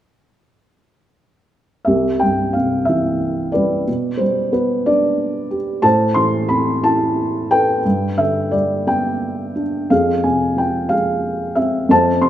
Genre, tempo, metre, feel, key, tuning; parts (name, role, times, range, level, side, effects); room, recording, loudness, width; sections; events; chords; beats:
classical, lyrical solo piano; 60 BPM (dotted quarters); 6/8; rubato; C major; A4 = 439 Hz
felt-muted upright piano; solo; 1.8-12.3 s; C2 to C6; -15 LUFS; equal
moderate concert hall reverb, RT60 2.0 s; minimal, uncompressed stereo recording; -15 LUFS; side -11 dB against mid
1.9-12.3 A section
1.9 C; 3.9 G/B; 5.8 Am; 7.8 G; 9.9 Fm
| 1.87 2.89 | 3.88 4.87 | 5.84 6.83 | 7.84 8.87 | 9.91 10.92 | 11.91